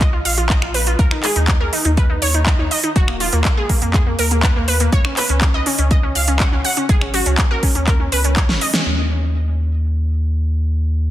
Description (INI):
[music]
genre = progressive house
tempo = 122 BPM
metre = 4/4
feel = straight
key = unclear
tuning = A4 = 438 Hz
[part]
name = wide unison pluck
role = arpeggios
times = 0.0-8.8 s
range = Bb3 to Gb5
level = -21 LUFS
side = equal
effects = sidechain pumping, digital delay
[part]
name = round analog bass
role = bass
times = 0.0-11.1 s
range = Eb1 to F2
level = -18 LUFS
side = equal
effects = sidechain pumping
[part]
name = big-room dance drum kit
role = drums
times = 0.0-8.8 s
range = finger snaps, handclaps, hi-hat, snare drum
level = -20 LUFS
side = right 1 dB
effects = soft clipping on snare, sidechain pumping on hats
[part]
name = electronic kick drum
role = drums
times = 0.0-8.5 s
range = none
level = -16 LUFS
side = equal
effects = overdrive
[sound]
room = light reverb, digital ambience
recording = dense, heavily limited modern master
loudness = -14 LUFS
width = side -13 dB against mid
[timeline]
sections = 0.0-8.9 A section; 8.9-11.1 B section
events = drum fill 8.5-8.9; band accent 8.7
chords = 0.0 Bbm; 1.0 Eb5; 4.9 Dbsus2; 8.9 N.C.